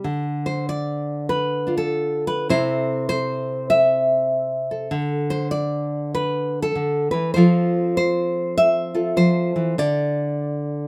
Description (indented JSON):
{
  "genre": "folk, solo fingerstyle acoustic guitar",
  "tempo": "99 BPM",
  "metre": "4/4",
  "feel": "swing 63% on 8ths",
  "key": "unclear",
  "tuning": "A4 = 440 Hz",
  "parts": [
    { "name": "nylon-string guitar", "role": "solo", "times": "0.0-10.9 s", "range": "C3 to E5", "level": "-22 LUFS", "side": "equal", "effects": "none" }
  ],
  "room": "moderate small room reverb, RT60 0.6 s",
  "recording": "none",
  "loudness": "-22 LUFS",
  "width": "mono",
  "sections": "0.1-10.9 A section",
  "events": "none",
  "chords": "0.1 Dm; 2.5 Am/C; 4.9 Cmaj7sus2/D (rootless); 7.4 F; 9.8 N.C."
}